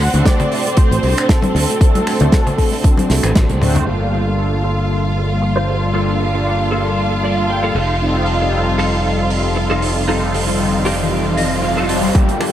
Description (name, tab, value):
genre	nu-disco, nu disco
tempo	116 BPM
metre	4/4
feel	swing 54% on 16ths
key	G minor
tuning	A4 = 437 Hz
part	wide unison lead	melody	0.0-3.6, 12.2-12.5 s	G4 to F#5	-23 LUFS	equal	analog delay
part	mellow synth brass	accompaniment	0.0-12.5 s	G3 to C5	-20 LUFS	left 1 dB	chorus, analog delay
part	rich studio string section	sustained chords	0.0-12.5 s	C4 to F5	-22 LUFS	equal	sidechain pumping, low-pass filter
part	modern bright fingered electric bass	bass	0.0-12.5 s	F1 to D2	-19 LUFS	equal	high-pass filter
part	damped 70s drum kit	drums	0.1-12.5 s	finger snaps, hi-hat, snare drum, toms	-23 LUFS	right 2 dB	low-pass filter on hats, low-pass filter on toms, low-pass filter on snare, low-pass filter on room, analog delay
part	congas	percussion	0.1-3.8 s	none	-24 LUFS	left 3 dB	none
part	electronic kick drum	drums	0.3-3.5, 12.2-12.3 s	none	-13 LUFS	equal	none
part	direct-recorded clean electric guitar	riff	3.9-12.5 s	Bb3 to A5	-24 LUFS	right 1 dB	ensemble chorus, low-pass filter, analog delay
part	riser	sound effects	9.8-12.2 s	none	-24 LUFS	equal	none
room	moderate spring reverb, RT60 2.5 s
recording	echo-heavy mix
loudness	-13 LUFS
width	side -11 dB against mid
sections	0.0-3.9 A section; 3.9-12.1 B section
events	filter sweep on analog polysynth 0.0-3.9; band accent 3.4; drum fill 3.5-3.9; filter sweep on drum 3.9-12.1; filter sweep on clean electric guitar 3.9-12.1; clean electric guitar fill 7.0-8.0, 11.1-12.1; riser 9.8-12.1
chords	0.0 D7; 3.9 Gm9; 7.8 F7